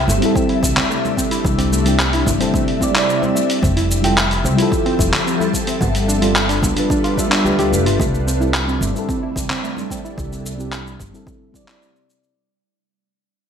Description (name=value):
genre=sunset chillout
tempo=110 BPM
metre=4/4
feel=straight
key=C major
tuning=A4 = 440 Hz
part: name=ethereal airy pad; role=sustained chords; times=0.0-12.3 s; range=C3 to E5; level=-23 LUFS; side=left 2 dB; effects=ensemble chorus, built-in reverb, phaser
part: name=soft round pluck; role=arpeggios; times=0.0-10.1 s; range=A3 to G4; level=-24 LUFS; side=right 2 dB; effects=chorus, digital delay
part: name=upright bass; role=bass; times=0.0-11.1 s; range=F1 to D2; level=-21 LUFS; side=equal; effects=tube saturation
part: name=dusty soul sampler-style drum kit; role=drums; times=0.1-12.3 s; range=cabasa, handclaps, hi-hat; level=-22 LUFS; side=equal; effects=gated reverb
part: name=congas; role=percussion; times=0.1-9.9 s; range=none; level=-28 LUFS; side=right 2 dB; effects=none
part: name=mellow FM electric piano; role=accompaniment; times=0.2-12.4 s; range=G3 to E5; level=-22 LUFS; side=equal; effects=chorus, phaser, auto-pan, digital delay
part: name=electronic kick drum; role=drums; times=0.4-11.7 s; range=none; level=-23 LUFS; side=equal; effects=overdrive
room=moderate plate reverb, RT60 1.9 s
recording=bright 1980s-style digital production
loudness=-15 LUFS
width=side -8 dB against mid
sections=0.0-8.0 A section; 8.0-12.4 B section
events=fade-out 8.0-12.4; filter sweep on ambient pad 8.0-12.4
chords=0.0 C6; 3.6 Fmaj9; 5.8 G7; 8.0 C6